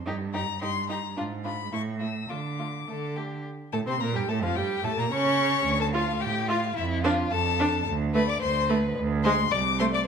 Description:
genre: quick classical-period movement for string quartet.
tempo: 108 BPM.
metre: 2/4.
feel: straight.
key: D minor.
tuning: A4 = 440 Hz.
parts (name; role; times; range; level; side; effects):
rich violin; second line; 0.1-10.1 s; E4 to D5; -32 LUFS; left 4 dB; none.
rich viola; accompaniment; 0.1-9.9 s; F3 to F4; -29 LUFS; right 3 dB; none.
rich cello; bass; 0.1-10.0 s; C2 to D3; -29 LUFS; right 4 dB; none.
rich violin; melody; 0.3-10.0 s; E5 to E6; -30 LUFS; left 10 dB; none.
room: moderate recital hall reverb, RT60 1.6 s.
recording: minimal, uncompressed stereo recording.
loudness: -24 LUFS.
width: side -6 dB against mid.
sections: 0.0-3.5 A section; 3.5-10.1 A section.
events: none.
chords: 0.1 Eb/G; 1.2 G#dim7; 1.7 A5; 2.3 D5; 3.5 Fadd9; 4.6 A7/G; 5.7 Dm; 6.8 Dm/F; 7.9 Bm7/D; 9.0 Csus2/D; 9.5 Am/C.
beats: | 0.07 0.62 | 1.17 1.73 | 2.30 2.88 | 3.45 4.01 | 4.57 5.12 | 5.67 6.22 | 6.77 7.32 | 7.87 8.42 | 8.97 9.52.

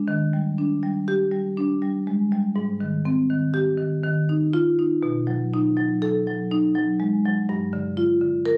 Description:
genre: classical, contemporary piece for solo marimba.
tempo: 122 BPM.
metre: 5/4.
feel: straight.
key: Eb major.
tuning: A4 = 436 Hz.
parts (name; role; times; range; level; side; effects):
marimba with medium mallets; solo; 0.0-8.6 s; G2 to Bb4; -23 LUFS; equal; none.
room: light reverb.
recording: recorded on a phone in the room, club reverb.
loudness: -23 LUFS.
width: mono.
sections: 0.1-8.6 A section.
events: none.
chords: 0.1 Ebmaj7; 2.6 Abmaj7; 4.0 Ebsus2; 5.0 B7; 7.5 G7(no3).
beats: | 0.07 0.57 1.08 1.58 2.07 | 2.56 3.05 3.54 4.04 4.53 | 5.03 5.52 6.01 6.51 7.00 | 7.48 7.97 8.46.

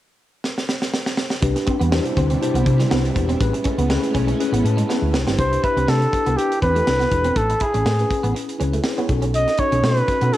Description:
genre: polished 1980s jazz-funk pop.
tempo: 121 BPM.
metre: 4/4.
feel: swing 54% on 16ths.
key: unclear.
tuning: A4 = 439 Hz.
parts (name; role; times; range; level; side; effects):
tight funk drum kit; drums; 0.4-10.4 s; hi-hat, kick drum, snare drum; -24 LUFS; right 1 dB; cassette tape.
mellow tine electric piano; accompaniment; 1.4-10.4 s; C#4 to A5; -24 LUFS; left 2 dB; medium stereo tremolo, wide subtle chorus, cassette tape.
string machine, full ensemble; sustained chords; 1.4-5.4 s; B2 to E4; -28 LUFS; equal; phaser, ensemble chorus, cassette tape.
hollow-body short-scale fingered electric bass; bass; 1.4-10.3 s; E1 to C3; -21 LUFS; equal; none.
electric guitar at the edge of break-up; riff; 1.6-10.4 s; G3 to E4; -27 LUFS; right 2 dB; ensemble chorus, cassette tape.
warm flugelhorn; melody; 5.4-10.4 s; G4 to D#5; -20 LUFS; equal; cassette tape.
room: light reverb, small room ambience.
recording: home recording on cassette.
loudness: -17 LUFS.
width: side -14 dB against mid.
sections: 0.0-1.4 A section; 1.4-5.4 B section; 5.4-10.4 C section.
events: drum fill 0.4-1.4, 4.9-5.4; tine electric piano fill 4.4-5.4.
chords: 0.0 N.C.; 1.4 Cmaj7; 3.4 Amaj7; 5.1 Cmaj7; 7.4 Amaj7; 9.1 B7.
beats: 0.43 0.93 | 1.42 1.92 2.41 2.91 | 3.40 3.90 4.39 4.89 | 5.38 5.88 6.38 6.87 | 7.37 7.86 8.36 8.85 | 9.35 9.84 10.33.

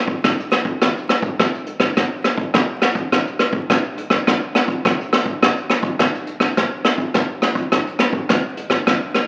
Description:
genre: samba.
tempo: 104 BPM.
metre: 4/4.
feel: straight.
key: none.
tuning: none.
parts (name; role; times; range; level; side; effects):
jazz brush drum kit; drums; 0.1-9.3 s; hi-hat, kick drum, rim click; -19 LUFS; equal; none.
room: wet large studio reverb, RT60 1.2 s.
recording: very old 78 rpm record, vinyl crackle, nothing above 11.0 kHz.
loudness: -19 LUFS.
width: mono.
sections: 0.0-9.3 A section.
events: none.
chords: none.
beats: 0.25 0.82 1.40 | 1.97 2.55 3.12 3.70 | 4.27 4.85 5.42 6.00 | 6.57 7.15 7.72 8.30 | 8.87.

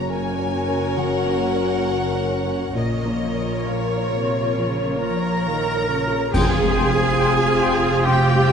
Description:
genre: cinematic, emotional film score for orchestra.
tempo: 66-70 BPM.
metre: 4/4.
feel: rubato.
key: F minor.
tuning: A4 = 440 Hz.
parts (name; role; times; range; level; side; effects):
warm symphonic violin section; melody; 0.0-8.5 s; Db5 to Ab5; -31 LUFS; left 2 dB; none.
rich studio violin section; second line; 0.0-8.5 s; Bb4 to Bb5; -27 LUFS; left 1 dB; none.
felt-muted upright piano; accompaniment; 0.0-8.5 s; F2 to Bb5; -27 LUFS; left 3 dB; none.
warm studio viola section; accompaniment; 0.0-8.5 s; C4 to Db5; -27 LUFS; right 1 dB; none.
concert harp; arpeggios; 0.0-8.5 s; F2 to C6; -29 LUFS; left 8 dB; none.
rich studio cello section; bass; 0.0-8.5 s; Gb2 to Bb4; -25 LUFS; right 3 dB; none.
warm studio double bass section; bass; 0.0-8.5 s; F1 to Bb1; -26 LUFS; right 3 dB; none.
warm oboe; second line; 5.0-8.5 s; G4 to Bb4; -25 LUFS; right 1 dB; none.
bright clarinet; second line; 6.3-8.5 s; G5; -30 LUFS; left 1 dB; none.
bright flute section; second line; 6.3-8.5 s; C6; -30 LUFS; left 6 dB; none.
clash cymbals and concert bass drum; percussion; 6.3-8.0 s; none; -27 LUFS; equal; none.
timpani; percussion; 6.3-7.6 s; F2; -28 LUFS; right 1 dB; none.
room: moderate scoring stage reverb, RT60 1.5 s.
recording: nothing above 10.4 kHz.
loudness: -18 LUFS.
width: side -7 dB against mid.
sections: 0.0-6.3 A section; 6.3-8.5 A section.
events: band accent 6.3-7.2.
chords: 0.0 Gb; 2.8 Bbm; 6.3 Fmadd9.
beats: 0.10 0.97 1.85 | 2.76 3.67 4.57 5.46 | 6.34 7.20 8.06.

